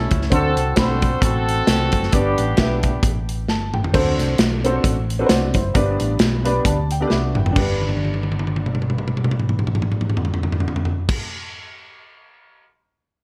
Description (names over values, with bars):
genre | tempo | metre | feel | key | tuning
uptempo gospel | 132 BPM | 4/4 | swing 55% on 8ths | G major | A4 = 440 Hz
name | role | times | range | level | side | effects
clear horn section | melody | 0.0-3.0 s | B3 to C5 | -25 LUFS | equal | digital delay
hollow-body short-scale fingered electric bass | bass | 0.0-11.1 s | F#1 to D2 | -26 LUFS | equal | none
modern studio drum kit | drums | 0.1-12.6 s | crash cymbal, hi-hat, kick drum, snare drum, toms | -22 LUFS | equal | gated reverb
warm upright piano | accompaniment | 0.3-11.1 s | G2 to B5 | -26 LUFS | equal | analog chorus
room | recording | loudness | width
moderate plate reverb, RT60 1.3 s, studio reverb | bright 1980s-style digital production | -20 LUFS | mono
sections
0.0-3.9 A section; 3.9-7.6 B section; 7.6-11.2 C section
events
upright piano fill 3.3-3.9, 6.2-7.6; drum fill 3.5-3.9, 7.1-7.6, 7.8-11.1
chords
0.3 D7; 2.1 G; 3.9 D7; 5.7 G